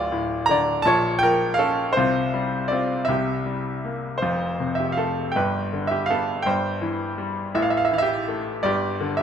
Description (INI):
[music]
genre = classical, lyrical solo piano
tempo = 54 BPM (dotted quarters)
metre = 6/8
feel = rubato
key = unclear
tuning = A4 = 439 Hz
[part]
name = bright grand piano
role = solo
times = 0.0-9.2 s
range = D1 to Bb5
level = -21 LUFS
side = equal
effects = none
[sound]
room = moderate recital hall reverb, RT60 1.6 s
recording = minimal, uncompressed stereo recording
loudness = -20 LUFS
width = side -8 dB against mid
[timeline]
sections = 0.0-9.2 A section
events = none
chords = 0.0 Dm; 0.9 Bbm; 2.0 Csus4; 3.1 C7; 4.2 F; 5.3 G; 6.5 C/G; 7.5 A5; 8.6 G5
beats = 0.85 | 1.96 3.08 | 4.22 5.35 | 6.45 7.54 | 8.63